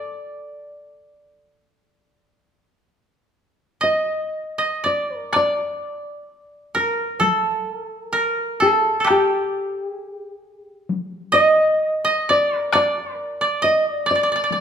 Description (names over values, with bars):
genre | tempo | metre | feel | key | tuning
japanese traditional, Japanese chamber music | 65 BPM | 4/4 | rubato | D miyako bushi | A4 = 441 Hz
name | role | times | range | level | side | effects
nylon-string guitar | melody | 0.0-14.6 s | G4 to Eb5 | -21 LUFS | left 1 dB | none
koto | second line | 0.0-14.6 s | G4 to Eb5 | -20 LUFS | right 2 dB | none
taiko ensemble | percussion | 5.3-14.6 s | none | -26 LUFS | left 4 dB | none
room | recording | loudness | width
moderate recital hall reverb, RT60 1.4 s | minimal, uncompressed stereo recording | -18 LUFS | side -8 dB against mid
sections
0.0-5.3 A section; 5.3-14.6 B section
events
none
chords
none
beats
0.59 | 1.49 2.40 3.34 4.33 | 5.33 6.27 7.21 8.15 | 9.06 9.97 10.89 11.82 | 12.73 13.63 14.52